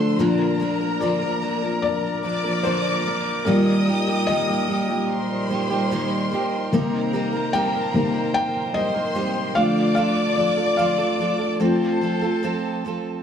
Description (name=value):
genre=pop ballad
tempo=74 BPM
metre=4/4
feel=straight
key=Bb major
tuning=A4 = 441 Hz
part: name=warm studio violin section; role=second line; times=0.0-13.2 s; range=A4 to Eb6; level=-28 LUFS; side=left 2 dB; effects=none
part: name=felt-muted upright piano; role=accompaniment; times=0.0-13.2 s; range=Bb2 to G5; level=-23 LUFS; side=left 3 dB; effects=none
part: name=mellow brass ensemble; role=sustained chords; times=0.0-13.2 s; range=Bb2 to D5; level=-27 LUFS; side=equal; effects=none
part: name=fingerpicked steel-string acoustic guitar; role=arpeggios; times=0.0-13.2 s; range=Bb2 to Bb4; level=-26 LUFS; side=right 5 dB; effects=none
room=moderate lush hall reverb, RT60 2.5 s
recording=none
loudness=-19 LUFS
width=side -8 dB against mid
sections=0.0-13.2 A section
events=felt piano solo 0.0-13.2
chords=0.2 Bb; 3.5 Eb/Bb; 6.7 Cm7; 9.6 Dm; 11.6 F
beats=| 0.19 1.01 1.83 2.65 | 3.47 4.28 5.10 5.91 | 6.73 7.54 8.35 9.15 | 9.97 10.78 11.60 12.44